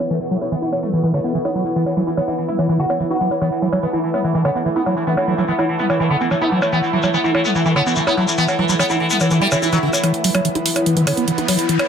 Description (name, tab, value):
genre	psychedelic trance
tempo	145 BPM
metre	4/4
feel	straight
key	unclear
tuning	A4 = 441 Hz
part	sitar	melody	0.0-10.0 s	B2 to F#4	-22 LUFS	left 1 dB	phaser, dub echo
part	bubbling stepped-filter texture	sustained chords	0.0-11.9 s	E3 to B3	-25 LUFS	right 1 dB	chorus, built-in reverb
part	electronic percussion blips and hi-hat	drums	0.0-11.9 s	none	-23 LUFS	right 1 dB	low-pass filter on hats, low-pass filter on perc, low-pass filter on snare, low-pass filter on room
part	shekere	percussion	0.0-10.0 s	none	-26 LUFS	left 4 dB	none
part	downlifter, swell and riser	sound effects	0.0-0.1, 9.4-11.9 s	none	-28 LUFS	right 2 dB	none
part	warbly tape-like pad	texture	0.2-11.9 s	E4 to B5	-26 LUFS	equal	chorus, built-in reverb
part	liquid acid bass	riff	0.1-11.8 s	D3 to E4	-20 LUFS	equal	chorus, auto-pan, cassette tape, tape echo
part	vowel-sweep wobble bass	second line	4.8-6.0 s	B3 to E4	-32 LUFS	right 2 dB	none
room	light reverb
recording	dense, heavily limited modern master, low-pass filter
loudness	-16 LUFS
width	side -7 dB against mid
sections	0.0-10.0 A section; 10.0-11.9 B section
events	filter sweep on acid bass 0.0-10.0, 10.0-11.9; filter sweep 0.0-10.0; swell 9.4-10.0; build-up 10.0-11.9; riser 10.0-11.9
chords	0.0 E5